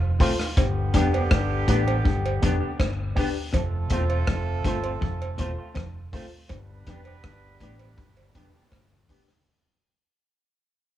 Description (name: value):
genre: roots reggae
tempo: 81 BPM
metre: 4/4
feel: straight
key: unclear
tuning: A4 = 441 Hz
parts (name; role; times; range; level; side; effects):
- mellow horn section; second line; 0.0-9.1 s; C3 to B4; -33 LUFS; right 3 dB; tape echo
- electric guitar at the edge of break-up; riff; 0.0-8.9 s; E2 to A2; -34 LUFS; left 7 dB; none
- vintage muted fingered electric bass; bass; 0.0-9.1 s; E1 to A1; -27 LUFS; equal; none
- electric guitar with an envelope filter; accompaniment; 0.2-9.2 s; A3 to G4; -33 LUFS; right 3 dB; wide subtle chorus, tape echo
- dark upright piano; stabs; 0.2-9.2 s; D4 to C5; -31 LUFS; left 8 dB; none
- vintage drum kit; drums; 0.2-9.4 s; hi-hat, kick drum, rim click; -26 LUFS; equal; none
- cowbell; percussion; 0.6-8.9 s; none; -35 LUFS; right 4 dB; none
room: light reverb, small room ambience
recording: none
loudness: -22 LUFS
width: side -12 dB against mid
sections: 0.0-9.5 A section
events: fade-out 0.0-9.5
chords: 0.0 F; 0.6 G; 3.5 F; 6.5 G